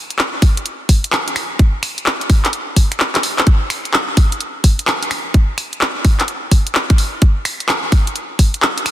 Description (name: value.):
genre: UK garage.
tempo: 128 BPM.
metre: 4/4.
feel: swing 65% on 16ths.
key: none.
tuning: none.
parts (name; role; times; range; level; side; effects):
garage drum kit; drums; 0.1-8.9 s; finger snaps, handclaps, hi-hat; -17 LUFS; equal; none.
electronic kick drum; drums; 0.4-8.5 s; none; -11 LUFS; equal; none.
room: light reverb.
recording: dense, heavily limited modern master.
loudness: -13 LUFS.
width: side -13 dB against mid.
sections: 0.0-8.9 A section.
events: kick drops out 3.0-3.5; drum fill 3.1-3.5.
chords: none.